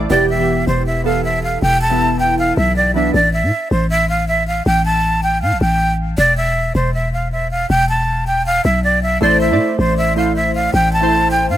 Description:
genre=hip hop, trap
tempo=158 BPM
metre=4/4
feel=half-time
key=A minor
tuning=A4 = 440 Hz
part: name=glassy digital keys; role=accompaniment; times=0.0-3.2, 9.2-11.6 s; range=E3 to D5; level=-19 LUFS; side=right 2 dB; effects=chorus
part: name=growling 808-style bass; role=bass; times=0.0-11.6 s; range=E1 to A2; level=-18 LUFS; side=equal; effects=none
part: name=breathy jazz flute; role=melody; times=0.1-11.6 s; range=C5 to A5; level=-16 LUFS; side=equal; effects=ping-pong delay
room=light reverb, small room ambience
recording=none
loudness=-13 LUFS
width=side -12 dB against mid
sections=0.0-3.1 A section; 3.1-11.6 A section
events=none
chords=0.1 Em; 3.1 A5; 6.2 E5; 9.2 Am

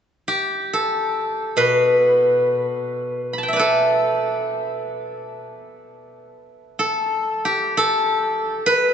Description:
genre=chinese traditional, Chinese solo plucked strings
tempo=free time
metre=none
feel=none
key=unclear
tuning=A4 = 438 Hz
part: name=steel-string zither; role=solo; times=0.3-8.9 s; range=B2 to B5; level=-18 LUFS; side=equal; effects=none
room=wet cathedral reverb, RT60 5.3 s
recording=recorded in a church or concert hall, nothing above 8.0 kHz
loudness=-18 LUFS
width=side -8 dB against mid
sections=0.0-8.9 A section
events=none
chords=none

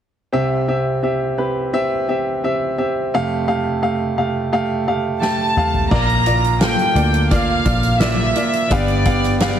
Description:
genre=piano-driven pop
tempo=86 BPM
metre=4/4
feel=straight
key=C major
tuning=A4 = 440 Hz
part: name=clear grand piano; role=accompaniment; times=0.3-9.6 s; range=F1 to G5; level=-18 LUFS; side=right 1 dB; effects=none
part: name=warm studio violin section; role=melody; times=5.2-9.6 s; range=D5 to Bb5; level=-19 LUFS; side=equal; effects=none
part: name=soft-mallet drum kit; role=drums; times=5.2-9.6 s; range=crash cymbal, hi-hat, kick drum, snare drum, toms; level=-21 LUFS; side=left 1 dB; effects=none
part: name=vintage muted picked electric bass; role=bass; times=5.9-9.5 s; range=G1 to D2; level=-19 LUFS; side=left 1 dB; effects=none
room=light reverb, studio ambience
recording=heavily compressed radio sound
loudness=-16 LUFS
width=side -9 dB against mid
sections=0.3-5.9 A section; 5.9-9.6 B section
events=drum fill 5.2-5.9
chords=0.3 C; 3.1 Fadd9; 5.9 Bb; 8.7 G7

